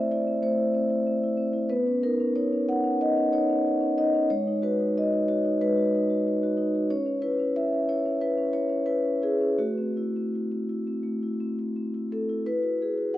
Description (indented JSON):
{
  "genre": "classical, contemporary piece for solo vibraphone",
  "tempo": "80-95 BPM",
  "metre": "4/4",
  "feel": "rubato",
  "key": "unclear",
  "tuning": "A4 = 441 Hz",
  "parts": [
    { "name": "vibraphone with soft mallets", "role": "solo", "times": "0.0-13.2 s", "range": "G#3 to F#5", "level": "-23 LUFS", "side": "equal", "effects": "none" }
  ],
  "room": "moderate recital hall reverb, RT60 1.8 s",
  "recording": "dark, warm production",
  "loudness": "-23 LUFS",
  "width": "side -14 dB against mid",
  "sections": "0.0-12.4 A section",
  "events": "none",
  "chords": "0.0 Am; 1.7 Badd9; 4.3 G#m7; 6.9 C#m; 9.6 Am6; 12.4 Eadd9"
}